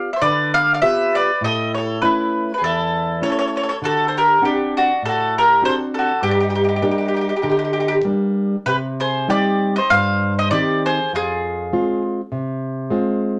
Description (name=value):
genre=italian folk, Italian serenade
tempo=100 BPM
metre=4/4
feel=straight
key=C minor from 8.7 s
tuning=A4 = 444 Hz
part: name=mandolin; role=melody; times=0.0-12.0 s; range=F#4 to F5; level=-20 LUFS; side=equal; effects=none
part: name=mandolin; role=second line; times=0.0-12.0 s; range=D4 to D5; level=-28 LUFS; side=equal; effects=none
part: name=nylon-string guitar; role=accompaniment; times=0.0-13.4 s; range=E2 to F#5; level=-24 LUFS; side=equal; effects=none
room=moderate studio ambience, RT60 0.5 s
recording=none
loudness=-19 LUFS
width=mono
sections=0.0-8.7 A section; 8.7-13.4 B section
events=none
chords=0.0 G7; 1.4 A; 3.8 D7; 6.2 Gm; 8.7 Cm; 11.1 Fm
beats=0.21 0.82 | 1.42 2.02 2.62 3.23 | 3.83 4.43 5.03 5.63 | 6.23 6.84 7.45 8.07 | 8.69 9.30 9.91 10.51 | 11.12 11.72 12.32 12.91